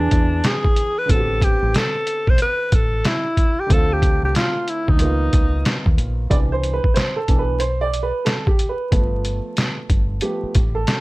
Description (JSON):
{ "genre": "hip hop, jazz-hop", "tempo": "92 BPM", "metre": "4/4", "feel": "swing 63% on 16ths", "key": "C major", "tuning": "A4 = 440 Hz", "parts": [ { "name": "mellow alto saxophone", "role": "melody", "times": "0.0-6.0 s", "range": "D4 to C5", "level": "-21 LUFS", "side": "equal", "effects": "plate reverb" }, { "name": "dark upright piano", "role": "accompaniment", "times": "0.0-11.0 s", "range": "D3 to D5", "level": "-25 LUFS", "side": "right 2 dB", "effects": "plate reverb" }, { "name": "deep dub fingered electric bass", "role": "bass", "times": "0.0-10.8 s", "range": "G1 to E2", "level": "-22 LUFS", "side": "equal", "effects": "none" }, { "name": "trip hop sampler-style drum kit", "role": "drums", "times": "0.1-11.0 s", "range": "hi-hat, kick drum, snare drum", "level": "-18 LUFS", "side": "equal", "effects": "none" } ], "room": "light reverb", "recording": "vinyl crackle", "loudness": "-16 LUFS", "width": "side -21 dB against mid", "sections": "0.0-6.3 A section; 6.3-11.0 B section", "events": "upright piano solo 6.3-11.0", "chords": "0.0 E7; 1.1 Am11; 3.7 Dm7; 5.0 Db13; 6.3 Cmaj9; 8.9 G7", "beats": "0.44 | 1.09 1.74 2.40 3.05 | 3.70 4.35 5.00 5.66 | 6.31 6.96 7.61 8.27 | 8.92 9.57 10.22 10.88" }